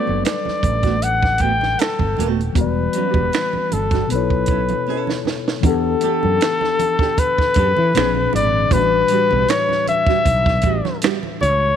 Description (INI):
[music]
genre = R&B, neo-soul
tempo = 78 BPM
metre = 4/4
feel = swing 53% on 16ths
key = E dorian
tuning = A4 = 443 Hz
[part]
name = warm flugelhorn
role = melody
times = 0.0-11.8 s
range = A4 to G5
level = -19 LUFS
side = left 2 dB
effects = none
[part]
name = nylon-string guitar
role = second line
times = 0.0-11.2 s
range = G3 to A4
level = -25 LUFS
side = right 14 dB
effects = none
[part]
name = mellow tine electric piano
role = accompaniment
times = 0.0-11.8 s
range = A2 to F#5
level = -24 LUFS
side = left 13 dB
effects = none
[part]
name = mellow fretless electric bass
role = bass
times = 0.1-11.7 s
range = D#1 to E3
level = -21 LUFS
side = right 1 dB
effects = none
[part]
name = congas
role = percussion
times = 0.1-11.6 s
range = none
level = -30 LUFS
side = right 10 dB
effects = none
[part]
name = compact cocktail drum kit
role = drums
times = 0.2-11.6 s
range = finger snaps, hi-hat, kick drum, snare drum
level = -21 LUFS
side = right 3 dB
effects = none
[sound]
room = light reverb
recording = 1960s-style stereo with parts hard left and right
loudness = -15 LUFS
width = side -9 dB against mid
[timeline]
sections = 0.0-5.6 A section; 5.6-11.8 B section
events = drum fill 4.9-5.6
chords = 0.0 Gmaj9; 2.6 Em9; 4.1 B9sus4; 5.6 Em11; 7.9 A#9; 8.7 A13sus4